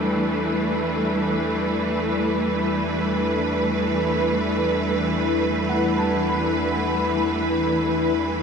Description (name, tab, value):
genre	ambient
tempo	free time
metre	none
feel	none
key	E minor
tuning	A4 = 440 Hz
part	rich studio string section	sustained chords	0.0-8.4 s	E3 to B4	-21 LUFS	right 1 dB	low-pass filter, shimmer reverb
part	felt-muted upright piano	arpeggios	0.0-8.4 s	F#5 to B5	-33 LUFS	equal	ping-pong delay, shimmer reverb
part	warm sub bass	bass	0.0-8.4 s	E2	-34 LUFS	equal	none
part	organ-like drone	drone	0.0-8.4 s	E3 to E4	-26 LUFS	left 3 dB	ensemble chorus, built-in reverb
room	wet cathedral reverb, RT60 5.3 s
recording	dark, warm production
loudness	-20 LUFS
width	side -6 dB against mid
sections	0.0-8.4 A section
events	fade-in on felt piano 0.0-8.4; fade-in on sub bass 0.0-8.4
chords	0.0 Emadd9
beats	free time